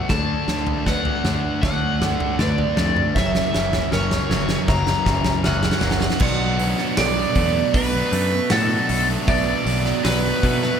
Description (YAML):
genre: post-rock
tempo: 78 BPM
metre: 4/4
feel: straight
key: B minor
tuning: A4 = 441 Hz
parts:
  - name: cranked stack guitar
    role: melody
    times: 0.0-10.8 s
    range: A4 to A#5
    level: -24 LUFS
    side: right 1 dB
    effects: overdrive, phaser, tape echo
  - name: felt-muted upright piano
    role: arpeggios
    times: 0.0-10.8 s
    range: A4 to F#5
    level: -34 LUFS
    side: right 4 dB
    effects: tape echo
  - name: twangy electric guitar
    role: arpeggios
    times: 0.0-10.8 s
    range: F#2 to F#4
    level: -32 LUFS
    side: left 3 dB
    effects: lush chorus, tape echo
  - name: sludgy distorted guitar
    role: riff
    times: 0.0-10.8 s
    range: F#2 to D4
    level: -27 LUFS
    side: left 9 dB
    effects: overdrive
  - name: distorted electric guitar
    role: riff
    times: 0.1-10.8 s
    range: F#2 to D4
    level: -26 LUFS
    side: right 12 dB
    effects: distortion
  - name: growling fingered electric bass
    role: bass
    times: 0.1-10.7 s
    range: F#1 to B2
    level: -24 LUFS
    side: equal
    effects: overdrive
  - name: huge arena drum kit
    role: drums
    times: 0.1-10.7 s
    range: crash cymbal, hi-hat, kick drum, snare drum, toms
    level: -23 LUFS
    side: equal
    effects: none
room: little or no reverb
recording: none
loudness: -18 LUFS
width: side -8 dB against mid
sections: 0.0-6.2 A section; 6.2-10.8 B section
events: build-up 0.0-6.2; drum fill 0.0-6.2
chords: 0.1 Dmaj7; 3.2 F#7; 6.2 Bm7